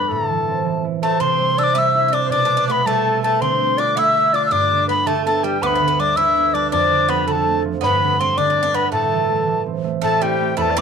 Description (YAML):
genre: celtic folk, Celtic jig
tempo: 109 BPM (dotted quarters)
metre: 6/8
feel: straight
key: A minor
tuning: A4 = 440 Hz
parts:
  - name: mellow hollow tin whistle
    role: melody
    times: 0.0-10.8 s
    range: G5 to E6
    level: -18 LUFS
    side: left 1 dB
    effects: none
  - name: bright wooden flute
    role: second line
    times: 0.0-10.8 s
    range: G4 to F#5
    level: -22 LUFS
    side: left 12 dB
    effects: none
  - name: concert harp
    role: accompaniment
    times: 0.0-10.8 s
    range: D2 to A4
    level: -22 LUFS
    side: right 7 dB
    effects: none
  - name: Irish bouzouki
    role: second line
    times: 1.0-10.8 s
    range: G3 to E4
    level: -25 LUFS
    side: right 11 dB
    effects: none
room: moderate spring reverb, RT60 1.2 s, small room ambience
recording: 1960s-style stereo with parts hard left and right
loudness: -15 LUFS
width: side -6 dB against mid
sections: 0.0-1.2 A section; 1.2-10.0 A section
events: none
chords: 0.1 Am; 1.2 C; 2.3 Gadd9/B; 3.4 Dm7; 4.5 G; 6.7 Dm/F; 7.8 G; 8.9 Am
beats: | 0.10 0.65 | 1.20 1.75 | 2.31 2.86 | 3.41 3.96 | 4.51 5.06 | 5.61 6.16 | 6.71 7.26 | 7.82 8.37 | 8.92 9.47 | 10.02 10.57